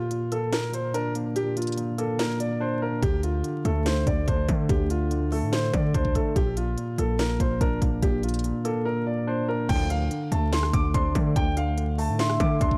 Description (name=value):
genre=hip hop, trap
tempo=144 BPM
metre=4/4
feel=half-time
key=D minor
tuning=A4 = 443 Hz
part: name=dark concert grand piano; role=melody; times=0.0-12.8 s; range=F4 to D6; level=-32 LUFS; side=equal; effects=delay
part: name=barky tine electric piano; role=accompaniment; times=0.0-12.8 s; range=Bb2 to D4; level=-31 LUFS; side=equal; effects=none
part: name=trap drum kit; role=drums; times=0.1-12.8 s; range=crash cymbal, hi-hat, kick drum, rim click, snare drum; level=-30 LUFS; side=equal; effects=none
part: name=hard-hitting 808-style bass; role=bass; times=3.0-12.8 s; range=Bb1 to D3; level=-29 LUFS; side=equal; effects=none
part: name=mellow brass ensemble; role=stabs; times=9.7-10.1 s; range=A2 to F3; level=-37 LUFS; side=equal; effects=none
part: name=soft octave-layered synth lead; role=second line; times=10.9-12.8 s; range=C5 to E5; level=-35 LUFS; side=equal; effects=chorus, delay
room=digital ambience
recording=vinyl crackle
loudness=-25 LUFS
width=mono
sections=0.0-9.7 A section; 9.7-12.8 B section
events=break 0.0-3.0; silent gap 2.6-3.0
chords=0.0 Bb; 3.0 Dm; 6.4 Bb; 9.7 Dmadd9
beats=0.11 0.53 0.94 | 1.36 1.78 2.19 2.61 | 3.03 3.44 3.86 4.28 | 4.69 5.11 5.53 5.94 | 6.36 6.78 7.19 7.61 | 8.03 8.44 8.86 9.28 | 9.69 10.11 10.53 10.94 | 11.36 11.78 12.19 12.61